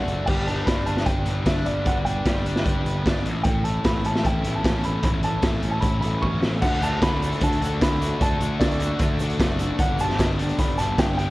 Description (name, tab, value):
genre	indie rock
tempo	151 BPM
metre	4/4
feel	straight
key	D major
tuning	A4 = 439 Hz
part	dark upright piano	melody	0.0-11.3 s	D5 to C#6	-29 LUFS	right 1 dB	plate reverb
part	distorted electric guitar	riff	0.0-11.3 s	G2 to B4	-28 LUFS	left 1 dB	distortion
part	fuzz picked electric bass	bass	0.1-11.3 s	F#1 to D2	-26 LUFS	equal	overdrive
part	raw garage drum kit	drums	0.1-11.3 s	crash cymbal, hi-hat, kick drum, snare drum	-23 LUFS	equal	none
part	tube shaker	percussion	6.6-11.1 s	none	-48 LUFS	right 4 dB	none
room	light reverb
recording	worn, warbling old tape, cassette tape, warbly pitch drift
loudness	-20 LUFS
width	side -19 dB against mid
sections	0.3-6.6 A section; 6.6-11.3 B section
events	drum fill 6.2-6.6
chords	0.3 G; 3.3 Aadd9; 6.6 D; 9.8 G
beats	| 0.28 0.67 1.07 1.47 | 1.86 2.26 2.66 3.06 | 3.45 3.85 4.25 4.64 | 5.04 5.44 5.83 6.23 | 6.63 7.03 7.42 7.82 | 8.21 8.61 9.01 9.40 | 9.80 10.20 10.59 10.99